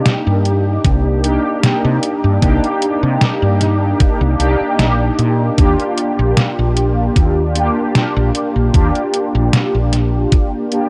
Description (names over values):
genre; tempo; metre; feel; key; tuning
vaporwave; 76 BPM; 4/4; swing 54% on 16ths; Eb major; A4 = 444 Hz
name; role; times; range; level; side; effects
mellow synth brass; accompaniment; 0.0-10.9 s; Bb3 to G4; -19 LUFS; equal; ensemble chorus, tape echo
detuned 8-bit digital drum machine; drums; 0.1-10.9 s; hi-hat, snare drum; -19 LUFS; equal; overdrive, vintage 12-bit sampler grit
woody fretless electric bass; bass; 0.3-10.2 s; Bb1 to C3; -18 LUFS; equal; none
electronic kick drum; drums; 0.8-10.5 s; none; -15 LUFS; equal; overdrive, vintage 12-bit sampler grit
room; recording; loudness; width
light reverb, digital ambience; cassette tape; -15 LUFS; mono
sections
0.0-10.9 A section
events
none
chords
0.0 Cm7; 5.6 Ebmaj7